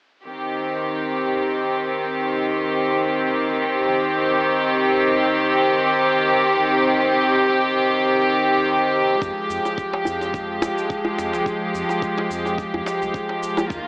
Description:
organic downtempo; 107 BPM; 4/4; swing 55% on 16ths; C minor; A4 = 440 Hz
clear studio string section; sustained chords; 0.3-13.9 s; Eb3 to G4; -21 LUFS; equal; sidechain pumping, shimmer reverb
round analog bass; bass; 9.2-13.8 s; C2 to F2; -40 LUFS; equal; sidechain pumping
electronic kick drum; drums; 9.2-13.8 s; -34 LUFS; equal
shaker; drums; 9.2-13.8 s; -46 LUFS; equal; overdrive
djembe; percussion; 9.7-13.7 s; -30 LUFS; equal
wet scoring stage reverb, RT60 1.9 s; AM radio sound; -21 LUFS; mono
0.2-13.9 A section
0.2 Cm; 9.2 Fmadd9
| 0.25 0.81 1.37 1.93 | 2.49 3.05 3.61 4.17 | 4.73 5.29 5.85 6.41 | 6.97 7.54 8.10 8.66 | 9.22 9.78 10.34 10.90 | 11.46 12.02 12.58 13.14 | 13.70

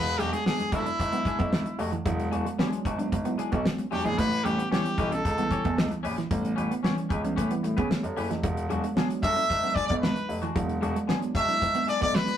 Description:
funk; 113 BPM; 4/4; straight; E mixolydian; A4 = 442 Hz
brilliant trumpet; melody; 0.0-5.9, 9.2-12.4 s; E4 to E5; -27 LUFS; equal
clean electric guitar; riff; 0.0-12.3 s; E3 to D4; -34 LUFS; right 4 dB
warm grand piano; bass; 0.0-12.1 s; E1 to C#3; -31 LUFS; equal
damped 70s drum kit; drums; 0.1-12.4 s; hi-hat, kick drum, snare drum; -30 LUFS; equal
twangy electric guitar; accompaniment; 0.2-12.3 s; G#3 to C#5; -36 LUFS; left 6 dB
mellow tine electric piano; stabs; 0.2-12.3 s; E3 to C#5; -32 LUFS; right 1 dB; medium stereo tremolo
wet small room reverb, RT60 0.5 s; rough rehearsal-room recording; -24 LUFS; side -10 dB against mid
0.0-12.4 A section
0.0 E9; 4.2 A9; 8.4 E9
0.46 0.99 1.52 | 2.06 2.59 3.12 3.65 | 4.18 4.71 5.25 5.78 | 6.31 6.84 7.37 7.90 | 8.43 8.96 9.49 10.02 | 10.55 11.08 11.61 12.14

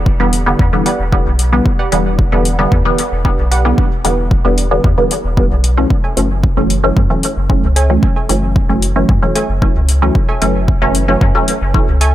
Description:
dub techno; 113 BPM; 4/4; straight; E dorian; A4 = 436 Hz
filtered dub chord stab; stabs; 0.0-11.9 s; D3 to C#4; -15 LUFS; equal; chorus, phaser, cassette tape, sidechain pumping, dub echo
warm sub bass; bass; 0.0-12.1 s; E1 to F#2; -16 LUFS; equal; tube saturation, sidechain pumping
electronic kick drum; drums; 0.1-11.9 s; -14 LUFS; equal; overdrive
electronic hi-hat; drums; 0.3-12.1 s; -20 LUFS; left 3 dB
warbly dusty pluck; riff; 0.9-12.1 s; G4 to G#5; -24 LUFS; right 3 dB; chorus, sidechain pumping, dub echo
little or no reverb; -11 LUFS; side -13 dB against mid
0.0-12.1 A section
0.0 Em7; 5.9 F#m7
0.06 0.59 1.12 | 1.66 2.19 2.72 3.25 | 3.78 4.31 4.84 5.37 | 5.90 6.43 6.97 7.50 | 8.03 8.56 9.09 9.62 | 10.15 10.68 11.21 11.74

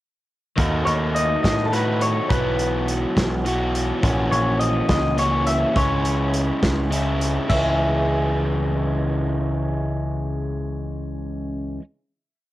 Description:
indie rock; 69 BPM (dotted quarters); 6/8; straight; C# minor; A4 = 440 Hz
crunchy overdriven guitar; riff; 0.6-11.8 s; A#2 to F#4; -24 LUFS; equal; cassette tape
growling picked electric bass; bass; 0.6-11.8 s; A#1 to A2; -24 LUFS; equal; overdrive
loose indie drum kit; drums; 0.6-7.6 s; hi-hat, kick drum, snare drum, splash cymbal; -24 LUFS; equal; cassette tape
electric guitar through a small old amp; melody; 0.9-11.8 s; A4 to E5; -24 LUFS; left 1 dB; cassette tape
light reverb; home recording on cassette; -19 LUFS; side -15 dB against mid
0.6-7.5 interlude; 7.5-11.0 final chord
0.6 D#dim; 2.3 Bsus4; 4.0 F#7/A#; 5.8 C#m
| 0.57 1.44 | 2.30 3.16 | 4.03 4.89 | 5.76 6.62 | 7.49 8.36 | 9.22 10.09

